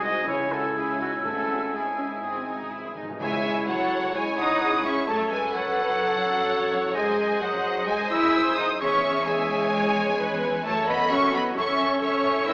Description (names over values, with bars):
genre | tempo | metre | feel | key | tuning
classical, dramatic, fast romantic movement for symphony orchestra | 129 BPM | 4/4 | straight | C# minor | A4 = 440 Hz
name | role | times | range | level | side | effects
clear symphonic violin section | melody | 0.0-12.5 s | F#5 to E6 | -29 LUFS | equal | none
mellow clarinet | second line | 0.0-12.5 s | B#3 to Bb4 | -30 LUFS | equal | none
mellow oboe | second line | 0.0-12.5 s | B#4 to G#5 | -32 LUFS | equal | none
rich symphonic violin section | second line | 0.0-12.5 s | D#4 to G#5 | -34 LUFS | equal | none
small flute group | second line | 0.0-12.5 s | F#5 to E6 | -30 LUFS | equal | none
rich symphonic viola section | accompaniment | 0.0-12.5 s | G#3 to E5 | -31 LUFS | equal | none
dark French horn section | sustained chords | 0.0-12.5 s | F#3 to E4 | -31 LUFS | equal | none
concert harp | arpeggios | 0.0-12.5 s | E2 to G#5 | -37 LUFS | equal | none
mellow trumpet | stabs | 0.0-2.7 s | F#4 to D#5 | -28 LUFS | equal | none
rich symphonic cello section | bass | 0.0-12.5 s | B#1 to E4 | -32 LUFS | equal | none
rich symphonic double bass section | bass | 0.0-12.5 s | G#1 to G2 | -40 LUFS | equal | none
timpani | percussion | 0.3-3.9 s | G#2 to C#3 | -43 LUFS | equal | none
room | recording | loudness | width
wet recital hall reverb, RT60 1.5 s | AM radio sound | -22 LUFS | side -31 dB against mid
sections
0.0-3.2 A section; 3.2-12.5 B section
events
timpani fill 2.2-3.2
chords
0.3 C#m; 1.2 C#m/G#; 2.2 G#; 3.2 C#m; 5.1 F#m7; 7.0 G#7/F#; 8.8 C#m/E; 10.6 F#m7